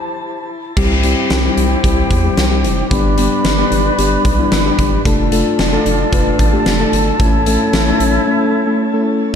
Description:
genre	synth-pop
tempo	112 BPM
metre	4/4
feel	straight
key	unclear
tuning	A4 = 443 Hz
part	mellow hollow small flute group	sustained chords	0.0-9.3 s	E4 to B5	-19 LUFS	left 1 dB	shimmer reverb
part	muted felt-like synth keys	accompaniment	0.8-9.2 s	G3 to B4	-17 LUFS	left 2 dB	chorus, shimmer reverb
part	round analog bass	bass	0.8-8.2 s	F1 to E2	-18 LUFS	equal	none
part	huge arena drum kit	drums	0.8-8.1 s	crash cymbal, hi-hat, kick drum, snare drum	-17 LUFS	equal	none
room	moderate concert hall reverb, RT60 2.0 s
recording	dark, warm production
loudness	-12 LUFS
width	side -8 dB against mid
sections	0.8-9.3 A section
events	break 0.0-0.8, 8.3-9.3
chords	0.0 C; 2.9 G; 5.1 Dm/F; 7.2 A

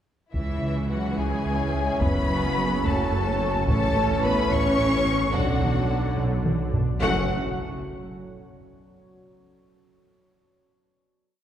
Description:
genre	cinematic, hybrid orchestral and electronic film score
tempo	72 BPM (dotted quarters)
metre	6/8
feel	straight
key	F# minor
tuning	A4 = 441 Hz
part	rich symphonic violin section	melody	0.3-7.3 s	E5 to C#6	-30 LUFS	left 3 dB	none
part	warm symphonic violin section	second line	0.3-7.3 s	E4 to F#5	-32 LUFS	left 2 dB	none
part	rich studio viola section	accompaniment	0.3-7.3 s	D3 to F#4	-33 LUFS	equal	none
part	analog drone	sustained chords	1.2-7.3 s	C#3 to D5	-32 LUFS	right 1 dB	chorus
part	mellow French horn section	sustained chords	0.3-7.2 s	E3 to D4	-33 LUFS	left 2 dB	none
part	round analog bass	riff	0.3-6.9 s	C#2 to B3	-31 LUFS	right 1 dB	none
part	clear symphonic double bass section	bass	0.3-7.3 s	F#1 to C#2	-33 LUFS	right 2 dB	none
part	dark tuba	bass	0.3-7.2 s	F#1 to C#2	-32 LUFS	right 2 dB	none
part	punchy sub bass	bass	0.3-7.3 s	F#1 to C#2	-33 LUFS	equal	none
part	rich symphonic cello section	bass	0.3-7.3 s	E3 to C#4	-32 LUFS	right 1 dB	none
part	taiko ensemble	drums	0.3-7.0 s	none	-30 LUFS	equal	none
room	wet concert hall reverb, RT60 2.4 s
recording	heard from further back in the room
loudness	-21 LUFS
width	side -10 dB against mid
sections	0.3-7.0 theme; 7.0-8.7 final chord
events	drum fill 6.2-7.0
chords	0.3 C#m; 2.0 F#m; 3.7 A; 5.3 Bm; 7.0 F#m

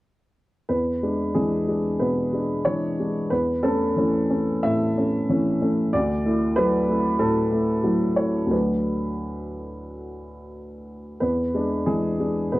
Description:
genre	neoclassical minimalist piano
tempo	91 BPM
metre	4/4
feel	rubato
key	unclear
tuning	A4 = 444 Hz
part	dark upright piano	solo	0.7-12.6 s	D2 to E5	-21 LUFS	equal	none
room	moderate studio ambience, RT60 0.5 s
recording	worn, warbling old tape, cassette tape, warbly pitch drift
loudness	-20 LUFS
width	side -18 dB against mid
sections	0.7-12.6 A section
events	none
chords	0.7 E7; 3.3 A/E; 5.9 Dadd9; 8.5 Bm7/D; 11.2 E7

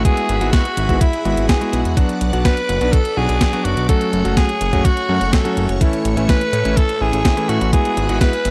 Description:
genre	italo disco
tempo	125 BPM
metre	4/4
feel	straight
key	B dorian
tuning	A4 = 439 Hz
part	raspy alto saxophone	melody	0.0-8.5 s	E4 to B4	-23 LUFS	equal	none
part	string machine, full ensemble	sustained chords	0.0-8.5 s	A3 to D6	-30 LUFS	equal	ensemble chorus
part	warm electric grand piano	stabs	0.0-8.3 s	E3 to F#4	-24 LUFS	equal	none
part	fat analog bass	bass	0.0-8.5 s	F#1 to A2	-22 LUFS	equal	tube saturation
part	clean 12-bit digital drum machine	drums	0.1-8.5 s	hi-hat, snare drum	-26 LUFS	equal	overdrive
part	electronic kick drum	drums	0.1-8.3 s	none	-18 LUFS	equal	overdrive
room	little or no reverb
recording	dry, gritty hardware recording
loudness	-17 LUFS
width	mono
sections	0.0-8.5 A section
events	none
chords	0.1 Eadd9/G#; 2.0 Bm; 3.9 F#m; 5.8 A; 7.7 Eadd9/G#

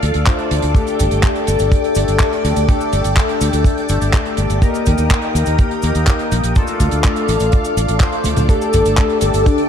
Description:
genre	italo disco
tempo	124 BPM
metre	4/4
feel	straight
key	G minor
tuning	A4 = 440 Hz
part	string machine, full ensemble	sustained chords	0.0-9.7 s	A4 to Eb6	-21 LUFS	left 1 dB	phaser, ensemble chorus
part	fingered electric bass	bass	0.0-9.4 s	G1 to Eb2	-18 LUFS	equal	tube saturation
part	damped 70s drum kit	drums	0.0-9.7 s	cabasa, handclaps, hi-hat, toms	-23 LUFS	right 1 dB	none
part	chorused polysynth	stabs	0.3-9.7 s	A3 to C5	-21 LUFS	left 4 dB	ping-pong delay
part	kick drum	drums	0.3-9.6 s	none	-14 LUFS	equal	none
part	wide unison lead	melody	8.5-9.7 s	D4 to A4	-17 LUFS	left 2 dB	ping-pong delay
room	moderate lush hall reverb, RT60 1.8 s, small room ambience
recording	dark, warm production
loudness	-13 LUFS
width	side -8 dB against mid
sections	0.0-9.7 A section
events	drum fill 8.3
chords	0.0 Dm; 0.8 Gsus2; 4.6 Eb; 6.6 Dm; 8.5 Gsus2

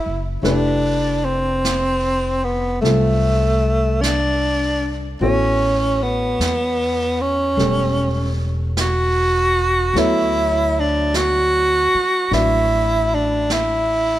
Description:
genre	jazz ballad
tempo	51 BPM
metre	4/4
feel	swing 69% on 8ths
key	D major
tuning	A4 = 440 Hz
part	breathy tenor saxophone	melody	0.0-14.2 s	A3 to F#4	-18 LUFS	right 1 dB	none
part	warm baby grand piano	accompaniment	0.0-14.2 s	E3 to D5	-25 LUFS	left 1 dB	none
part	upright bass	bass	0.1-14.2 s	E1 to E2	-22 LUFS	equal	none
part	jazz brush drum kit	drums	0.4-14.2 s	brushed snare drum, hi-hat, snare drum	-29 LUFS	right 2 dB	none
room	light reverb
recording	none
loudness	-16 LUFS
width	side -13 dB against mid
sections	0.0-14.2 A section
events	none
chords	0.4 Fmaj9#11; 5.2 A7; 9.9 Dmaj9

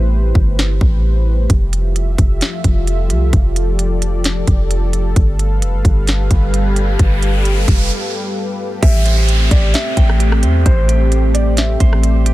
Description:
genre	hip hop, atmospheric cloud-rap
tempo	131 BPM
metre	4/4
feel	half-time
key	A minor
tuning	A4 = 440 Hz
part	dark analog pad	sustained chords	0.0-12.3 s	F3 to F5	-22 LUFS	left 1 dB	chorus, sidechain pumping
part	warm 808-style bass	bass	0.0-12.3 s	F1 to E2	-14 LUFS	equal	none
part	trap drum kit	drums	0.4-12.3 s	hi-hat, kick drum, rim click, snare drum	-15 LUFS	equal	none
part	riser and downlifter	sound effects	6.4-12.3 s	none	-25 LUFS	right 1 dB	none
part	felt-muted upright piano	melody	8.8-12.0 s	C5 to E5	-24 LUFS	left 1 dB	tape echo
part	clean electric guitar	arpeggios	8.8-12.3 s	G4 to G5	-26 LUFS	right 9 dB	tape echo
room	little or no reverb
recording	dense, heavily limited modern master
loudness	-12 LUFS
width	side -17 dB against mid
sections	0.0-8.8 A section; 8.8-12.3 B section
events	break 0.0-1.5, 7.9-8.8; riser 6.4-8.8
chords	0.0 Am7; 1.5 Fmaj7; 5.2 G7; 8.8 Am7

